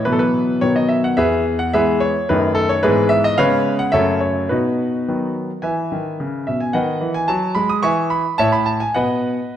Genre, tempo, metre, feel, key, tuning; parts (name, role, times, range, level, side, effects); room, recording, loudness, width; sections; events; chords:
classical-period piano sonatina; 108 BPM; 2/4; straight; E major; A4 = 441 Hz
clear concert grand piano; solo; 0.0-9.6 s; E2 to D#6; -16 LUFS; equal
moderate recital hall reverb, RT60 1.6 s; dark, warm production; -16 LUFS; side -10 dB against mid
0.0-5.6 A section; 5.6-9.6 B section
0.1 Bsus4; 0.6 B; 1.2 E; 2.3 D#dim/F#; 2.8 E/G#; 3.4 C#7; 3.9 F#m7; 4.5 B; 5.6 E; 6.8 B/D#; 7.8 E; 8.4 A; 9.0 B